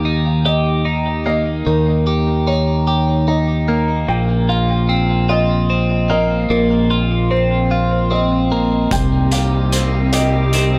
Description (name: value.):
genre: post-rock.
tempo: 50 BPM (dotted quarters).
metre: 6/8.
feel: straight.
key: unclear.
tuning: A4 = 440 Hz.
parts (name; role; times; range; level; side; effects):
felt-muted upright piano; arpeggios; 0.0-10.8 s; Bb4 to G5; -25 LUFS; equal; digital delay.
twelve-string electric guitar; arpeggios; 0.0-10.8 s; Bb2 to G4; -20 LUFS; equal; phaser, digital delay.
growling fingered electric bass; bass; 0.0-10.8 s; Bb1 to Eb2; -20 LUFS; equal; overdrive.
rich chamber string section; sustained chords; 8.9-10.8 s; C3 to Eb4; -27 LUFS; equal; none.
oversized low-tuned drum kit; drums; 8.9-10.7 s; hi-hat, kick drum; -25 LUFS; equal; none.
room: light reverb, studio ambience.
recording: none.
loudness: -16 LUFS.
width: mono.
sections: 0.0-10.8 A section.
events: none.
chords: 0.0 Eb; 4.1 Bbsus2; 8.9 Cm7.